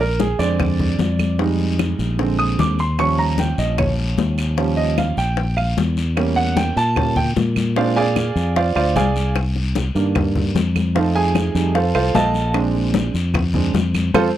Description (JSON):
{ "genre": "Afro-Cuban jazz", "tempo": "151 BPM", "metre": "4/4", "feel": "straight", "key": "Bb mixolydian", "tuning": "A4 = 439 Hz", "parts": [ { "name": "warm concert grand piano", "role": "accompaniment", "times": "0.0-14.3 s", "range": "D3 to Eb6", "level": "-20 LUFS", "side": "right 5 dB", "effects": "none" }, { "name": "fingered electric bass", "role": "bass", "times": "0.0-14.3 s", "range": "Bb1 to Bb2", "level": "-20 LUFS", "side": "left 1 dB", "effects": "none" }, { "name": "bongos", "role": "percussion", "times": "0.0-14.2 s", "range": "none", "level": "-26 LUFS", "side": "left 10 dB", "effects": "none" }, { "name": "congas", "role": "percussion", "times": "0.0-14.2 s", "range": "none", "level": "-24 LUFS", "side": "left 3 dB", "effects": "none" }, { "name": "guiro", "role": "percussion", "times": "0.2-14.2 s", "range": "none", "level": "-33 LUFS", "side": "left 5 dB", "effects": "none" }, { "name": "claves", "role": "percussion", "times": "0.6-14.2 s", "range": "none", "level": "-29 LUFS", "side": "right 11 dB", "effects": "none" } ], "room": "light reverb", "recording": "dry, close 1970s-style studio recording", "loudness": "-16 LUFS", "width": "side -12 dB against mid", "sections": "0.0-14.4 A section", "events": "grand piano solo 0.0-14.4; band accent 14.1", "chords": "0.0 Bb9; 1.4 Fm7; 2.2 Bb9; 3.0 Eb9; 6.2 Edim7; 7.8 Bb9; 9.4 Cm7; 11.0 F7; 12.6 Bb9", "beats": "0.20 0.60 1.00 | 1.40 1.79 2.19 2.59 | 2.99 3.39 3.79 4.18 | 4.58 4.98 5.38 5.78 | 6.17 6.57 6.97 7.37 | 7.77 8.16 8.56 8.96 | 9.36 9.76 10.16 10.55 | 10.95 11.35 11.75 12.15 | 12.55 12.95 13.35 13.75 | 14.15" }